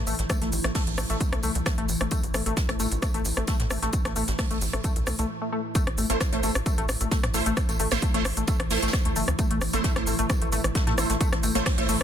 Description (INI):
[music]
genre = driving peak-time techno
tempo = 132 BPM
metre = 4/4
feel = straight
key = A minor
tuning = A4 = 444 Hz
[part]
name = tight sequenced synth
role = riff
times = 0.0-12.0 s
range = A3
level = -31 LUFS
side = left 3 dB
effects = chorus, sidechain pumping, ping-pong delay
[part]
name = tight sequencer bass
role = bass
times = 0.0-12.0 s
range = G1 to A2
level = -30 LUFS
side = equal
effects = sidechain pumping
[part]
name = metallic inharmonic drone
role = drone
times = 0.0-12.0 s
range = A2 to E3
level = -35 LUFS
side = left 1 dB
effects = chorus, built-in reverb, phaser, sidechain pumping
[part]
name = jazz brush drum kit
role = drums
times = 0.1-12.0 s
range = hi-hat, snare drum, tambourine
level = -37 LUFS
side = right 1 dB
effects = high-pass filter on hats, soft clipping on snare, high-pass filter on snare, high-pass filter on perc, high-pass filter on room
[part]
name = techno drum kit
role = drums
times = 0.1-12.0 s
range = hi-hat, rim click, shaker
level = -30 LUFS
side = equal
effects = overdrive
[part]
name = electronic kick drum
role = drums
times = 0.3-11.8 s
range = none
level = -26 LUFS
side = equal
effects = overdrive
[part]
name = rave stab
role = stabs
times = 6.1-11.9 s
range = A3 to C5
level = -30 LUFS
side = right 4 dB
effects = chorus, built-in reverb, phaser, sidechain pumping, tape echo
[sound]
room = small room ambience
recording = dense, heavily limited modern master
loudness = -23 LUFS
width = side -9 dB against mid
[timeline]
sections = 0.0-5.8 A section; 5.8-12.0 B section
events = break 5.3-5.8; drop 5.8-12.0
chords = 0.0 A5; 5.8 Am